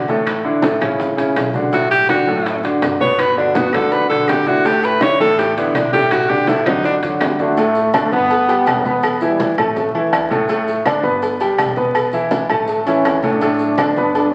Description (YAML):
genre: latin, salsa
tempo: 164 BPM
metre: 4/4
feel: straight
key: D major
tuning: A4 = 442 Hz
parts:
  - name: clear grand piano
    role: accompaniment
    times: 0.0-14.3 s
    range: A2 to B5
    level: -20 LUFS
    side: equal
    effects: none
  - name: upright bass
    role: bass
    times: 0.0-14.3 s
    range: E1 to G2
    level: -34 LUFS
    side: equal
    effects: none
  - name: bongos and cowbell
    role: percussion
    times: 0.1-14.3 s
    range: none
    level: -30 LUFS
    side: equal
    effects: none
  - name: congas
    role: percussion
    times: 0.1-14.3 s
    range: none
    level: -28 LUFS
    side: equal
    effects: none
  - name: maracas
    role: percussion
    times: 0.1-14.3 s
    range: none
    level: -48 LUFS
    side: equal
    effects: none
  - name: claves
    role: percussion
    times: 0.3-14.0 s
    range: none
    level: -32 LUFS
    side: equal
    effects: none
  - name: timbales and agogo bells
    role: percussion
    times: 0.3-14.3 s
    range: none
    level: -26 LUFS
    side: equal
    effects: none
  - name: clear tenor saxophone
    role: melody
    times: 1.7-7.0 s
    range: B3 to C#5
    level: -19 LUFS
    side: equal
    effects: none
  - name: warm trombone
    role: melody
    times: 7.1-10.3, 12.9-14.3 s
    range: F#3 to D4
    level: -20 LUFS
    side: equal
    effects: none
room: wet large studio reverb, RT60 1.2 s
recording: very old 78 rpm record, vinyl crackle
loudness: -16 LUFS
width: mono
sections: 0.0-7.6 A section; 7.6-14.3 B section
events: tenor saxophone solo 0.0-7.6; drum fill 6.1-7.6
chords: 0.3 Asus4; 1.0 A; 1.7 Bm7; 3.2 Gmaj7; 4.7 Asus4; 6.1 Bm7; 7.6 D5; 8.3 G; 9.0 E5; 9.8 A; 10.5 D5; 11.2 G; 12.0 E5; 12.7 A; 13.4 D5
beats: | 0.27 0.63 1.00 1.36 | 1.73 2.09 2.46 2.82 | 3.19 3.55 3.92 4.29 | 4.65 5.02 5.38 5.75 | 6.11 6.48 6.84 7.21 | 7.58 7.94 8.31 8.67 | 9.04 9.40 9.77 10.13 | 10.50 10.86 11.23 11.59 | 11.96 12.32 12.69 13.05 | 13.42 13.79 14.15